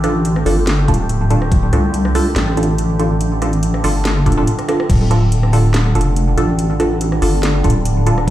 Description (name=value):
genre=deep dubstep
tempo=142 BPM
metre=4/4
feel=swing 53% on 16ths, half-time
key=D minor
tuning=A4 = 440 Hz
part: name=overtone-sweeping drone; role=sustained chords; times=0.0-8.3 s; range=D3 to G4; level=-23 LUFS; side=equal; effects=chorus, built-in reverb
part: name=filtered dub chord stab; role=stabs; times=0.0-8.1 s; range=D4 to A4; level=-20 LUFS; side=right 2 dB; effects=phaser, dub echo
part: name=deep soft wobble bass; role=bass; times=0.0-8.3 s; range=D1 to C2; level=-15 LUFS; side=equal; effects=chorus
part: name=garage drum kit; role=drums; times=0.0-8.3 s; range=crash cymbal, hi-hat, rim click, snare drum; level=-24 LUFS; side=left 1 dB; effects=small room ambience
part: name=electronic kick drum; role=drums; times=0.9-1.6, 4.3-5.0, 7.6-8.3 s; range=none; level=-16 LUFS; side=equal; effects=small room ambience
room=light reverb, digital ambience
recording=played on a big sound system in a bare room, stone room reverb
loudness=-13 LUFS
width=side -13 dB against mid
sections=0.0-8.3 A section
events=break 4.5-4.9; drum fill 4.6-4.9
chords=0.0 Dm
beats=0.25 0.67 1.09 | 1.52 1.94 2.36 2.78 | 3.21 3.63 4.05 4.47 | 4.90 5.32 5.74 6.16 | 6.59 7.01 7.43 7.85 | 8.28